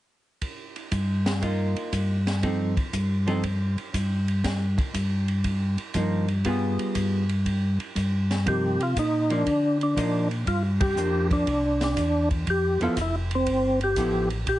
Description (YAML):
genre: soul jazz organ trio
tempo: 120 BPM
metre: 4/4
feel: swing 68% on 8ths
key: C minor from 8.5 s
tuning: A4 = 437 Hz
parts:
  - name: open jazz drum kit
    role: drums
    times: 0.4-14.6 s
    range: hi-hat, kick drum, ride cymbal, snare drum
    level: -31 LUFS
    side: equal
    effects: none
  - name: mellow tonewheel organ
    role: bass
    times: 0.9-14.6 s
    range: F1 to D3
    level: -25 LUFS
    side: equal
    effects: slow rotary speaker
  - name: archtop guitar, miked and amplified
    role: accompaniment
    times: 1.4-14.3 s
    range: F3 to A4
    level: -28 LUFS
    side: equal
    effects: none
  - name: percussive tonewheel organ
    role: melody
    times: 8.5-14.6 s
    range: C4 to G4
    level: -24 LUFS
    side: equal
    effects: slow rotary speaker, overdrive, chorus vibrato
room: light reverb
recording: heavily compressed radio sound, multiband compression, nothing above 10.6 kHz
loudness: -22 LUFS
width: side -15 dB against mid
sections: 0.4-8.5 A section; 8.5-14.6 B section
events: band accent 10.7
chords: 0.4 Gm7; 2.4 F7; 4.4 Gm7; 6.4 G7b9; 8.5 Cm11; 10.5 Gm7; 11.5 Cadd9; 12.5 Fmaj9#11